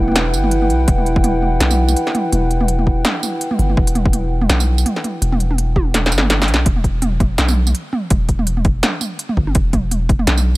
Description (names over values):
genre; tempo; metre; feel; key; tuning
half-time drum and bass; 166 BPM; 4/4; swing 57% on 16ths, half-time; E minor; A4 = 440 Hz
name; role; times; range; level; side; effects
dark analog pad; sustained chords; 0.0-6.7 s; E4 to G5; -21 LUFS; equal; chorus, sidechain pumping
long sustained 808-style bass; bass; 0.0-10.6 s; E1 to B1; -17 LUFS; equal; none
industrial drum kit; drums; 0.0-10.4 s; hi-hat, snare drum, tambourine, toms; -19 LUFS; right 1 dB; overdrive
electronic kick drum; drums; 0.9-10.2 s; none; -16 LUFS; equal; overdrive
room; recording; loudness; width
digital ambience; none; -14 LUFS; side -20 dB against mid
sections
0.0-6.7 A section; 6.7-10.6 A section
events
drop 0.0-6.7, 6.7-10.6; drum fill 5.9-6.7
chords
0.0 Emadd9; 6.7 E5